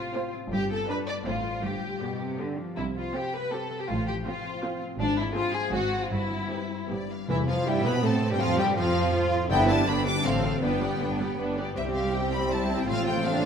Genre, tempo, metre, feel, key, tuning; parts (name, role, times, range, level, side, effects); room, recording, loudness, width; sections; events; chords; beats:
classical, dramatic, fast romantic movement for symphony orchestra; 161 BPM; 3/4; rubato; C major; A4 = 439 Hz
rich studio violin section; melody; 0.0-13.5 s; B4 to D6; -32 LUFS; left 4 dB
rich symphonic violin section; second line; 0.0-13.5 s; D4 to D5; -32 LUFS; left 2 dB
rich symphonic viola section; accompaniment; 0.0-13.5 s; D3 to C5; -32 LUFS; right 3 dB
concert harp; arpeggios; 0.0-13.5 s; G2 to D5; -34 LUFS; left 8 dB
rich symphonic cello section; bass; 0.5-13.5 s; G2 to G4; -32 LUFS; right 3 dB
rich symphonic double bass section; bass; 0.5-13.5 s; G1 to B2; -32 LUFS; right 3 dB
mellow French horn section; sustained chords; 7.3-13.5 s; E3 to D4; -32 LUFS; left 3 dB
timpani; percussion; 7.3-10.0 s; G2 to C3; -34 LUFS; left 1 dB
moderate concert hall reverb, RT60 2.3 s; -25 LUFS; side -7 dB against mid
0.0-7.3 A section; 7.3-13.5 A section
0.0 F/A; 0.5 G; 1.3 F/A; 1.6 G; 2.8 C5; 3.9 F/A; 5.0 Fm/Ab; 5.7 Ab7; 6.1 C/G; 6.9 G; 7.3 C/E; 8.4 F; 9.5 G; 10.2 F/A; 10.6 G; 11.8 C; 12.9 F/A
0.15 | 0.51 0.88 1.25 | 1.63 2.01 2.39 | 2.77 3.15 3.52 | 3.89 4.26 4.63 | 4.99 5.36 5.73 | 6.11 6.51 6.90 | 7.29 7.66 8.03 | 8.40 8.77 9.13 | 9.50 9.87 10.24 | 10.62 11.01 11.39 | 11.77 12.14 12.51 | 12.88 13.25